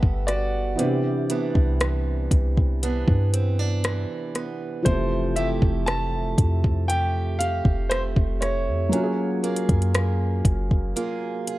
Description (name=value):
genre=contemporary R&B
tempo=59 BPM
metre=4/4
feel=straight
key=unclear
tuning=A4 = 440 Hz
part: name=felt-muted upright piano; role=accompaniment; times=0.0-11.6 s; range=C3 to G#4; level=-29 LUFS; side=equal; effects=none
part: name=picked acoustic archtop guitar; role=arpeggios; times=0.0-11.6 s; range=C3 to A4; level=-30 LUFS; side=right 4 dB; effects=none
part: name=clean 808-style bass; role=bass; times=0.0-10.9 s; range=F1 to G2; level=-24 LUFS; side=equal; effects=none
part: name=smooth R&B drum kit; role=drums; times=0.0-11.6 s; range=hi-hat, kick drum, rim click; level=-22 LUFS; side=equal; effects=none
part: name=warm baby grand piano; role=melody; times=0.3-9.9 s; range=C5 to A5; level=-29 LUFS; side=equal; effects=none
room=small room ambience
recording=dark, warm production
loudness=-21 LUFS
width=side -17 dB against mid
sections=0.0-11.6 A section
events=break 11.0-11.6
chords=0.0 Gmaj9; 0.8 Cmaj9; 4.9 Fmaj9; 8.9 F#maj9